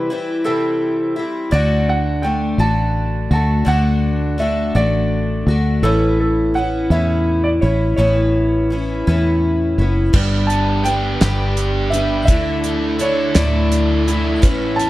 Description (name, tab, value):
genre	folk rock and heartland rock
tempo	56 BPM (dotted quarters)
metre	6/8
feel	straight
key	D major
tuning	A4 = 440 Hz
part	warm concert grand piano	melody	0.0-14.9 s	A4 to A5	-22 LUFS	right 1 dB	none
part	picked twelve-string acoustic guitar	accompaniment	0.0-14.9 s	G2 to G4	-19 LUFS	left 1 dB	none
part	fingered electric bass	bass	1.5-14.9 s	F#1 to E2	-18 LUFS	equal	none
part	biting overdriven guitar	riff	10.1-14.9 s	G2 to G4	-24 LUFS	right 2 dB	none
part	damped 70s drum kit	drums	10.1-14.9 s	crash cymbal, hi-hat, kick drum, snare drum	-18 LUFS	equal	none
part	tonewheel organ	sustained chords	10.2-14.9 s	A3 to B4	-31 LUFS	right 2 dB	none
room	light reverb, studio reverb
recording	dark, warm production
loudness	-15 LUFS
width	side -16 dB against mid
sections	0.0-10.1 A section; 10.1-14.9 B section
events	none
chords	0.0 C; 1.5 D; 5.8 Aadd9; 10.1 G; 12.3 Dsus2